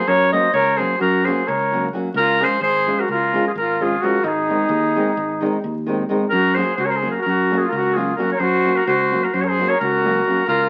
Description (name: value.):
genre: balkan folk, Balkan wedding band.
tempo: 260 BPM (eighths).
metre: 9/8.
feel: straight.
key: unclear.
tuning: A4 = 439 Hz.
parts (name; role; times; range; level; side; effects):
clear clarinet; melody; 0.0-10.7 s; Ab4 to Eb5; -22 LUFS; equal; none.
warm trumpet; second line; 0.0-10.7 s; Eb4 to C5; -24 LUFS; equal; none.
fingered electric bass; bass; 0.1-10.7 s; Ab1 to Gb2; -28 LUFS; equal; none.
flamenco guitar; accompaniment; 0.3-10.4 s; Eb3 to Gb4; -26 LUFS; equal; none.
room: wet studio reverb, RT60 0.7 s.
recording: very old 78 rpm record, vinyl crackle.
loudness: -19 LUFS.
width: mono.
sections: 0.0-6.3 A section; 6.3-10.7 A section.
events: none.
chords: 0.0 Gb; 2.2 Db; 4.3 Ab; 6.3 Gb.